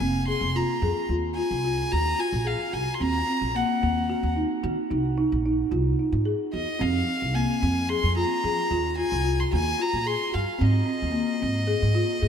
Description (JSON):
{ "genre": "progressive instrumental, band music in an uneven meter", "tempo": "110 BPM", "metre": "7/4", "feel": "straight", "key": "unclear", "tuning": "A4 = 442 Hz", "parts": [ { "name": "bright violin", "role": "melody", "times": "0.0-12.3 s", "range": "Eb5 to C6", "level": "-29 LUFS", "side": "left 1 dB", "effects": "none" }, { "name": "folk marimba with soft mallets", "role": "arpeggios", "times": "0.0-12.3 s", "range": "Bb3 to Ab4", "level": "-26 LUFS", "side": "equal", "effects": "none" }, { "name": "upright bass", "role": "bass", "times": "0.0-12.3 s", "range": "F1 to F3", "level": "-26 LUFS", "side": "equal", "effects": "none" } ], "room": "moderate cathedral reverb, RT60 6.6 s", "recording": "in a vast, echoing space", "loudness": "-22 LUFS", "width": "side -8 dB against mid", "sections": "0.0-12.3 A section", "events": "none", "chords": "0.0 Fm; 3.0 Ebm; 6.8 Fm; 10.6 Ab" }